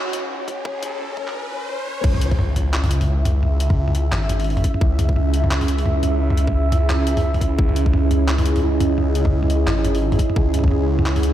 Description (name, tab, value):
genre	half-time drum and bass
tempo	173 BPM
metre	4/4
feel	swing 59% on 16ths, half-time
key	C# minor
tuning	A4 = 440 Hz
part	deep dark ambient pad	sustained chords	0.0-11.3 s	C#4 to G#5	-25 LUFS	right 3 dB	chorus, built-in reverb, sidechain pumping
part	felt-muted upright piano	arpeggios	0.0-2.1 s	C#4	-30 LUFS	left 4 dB	lush chorus, ping-pong delay
part	phased detuned saw bass	bass	0.0-11.3 s	G#1 to C#2	-20 LUFS	equal	phaser, high-pass filter
part	riser and impact	sound effects	0.0-3.4 s	none	-28 LUFS	equal	none
part	pulsing gated texture	texture	0.0-11.3 s	C#4 to E5	-28 LUFS	right 2 dB	chorus, built-in reverb
part	boom bap sampler-style drum kit	drums	0.1-11.3 s	crash cymbal, handclaps, hi-hat, toms	-25 LUFS	equal	none
part	electronic kick drum	drums	0.5-10.7 s	none	-19 LUFS	equal	overdrive
room	moderate lush hall reverb, RT60 1.9 s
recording	dreamy mix soaked in reverb, high-pass filter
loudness	-17 LUFS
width	side -12 dB against mid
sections	0.0-2.0 A section; 2.0-11.3 B section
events	build-up 0.0-2.0; riser 0.0-2.0; drop 2.0-11.3; impact 2.0-3.4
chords	0.0 C#5; 2.0 C#m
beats	0.30 | 0.65 1.00 1.34 1.69 | 2.04 2.39 2.73 3.08 | 3.43 3.77 4.12 4.47 | 4.81 5.16 5.51 5.85 | 6.20 6.55 6.89 7.24 | 7.59 7.93 8.28 8.63 | 8.97 9.32 9.67 10.02 | 10.36 10.71 11.06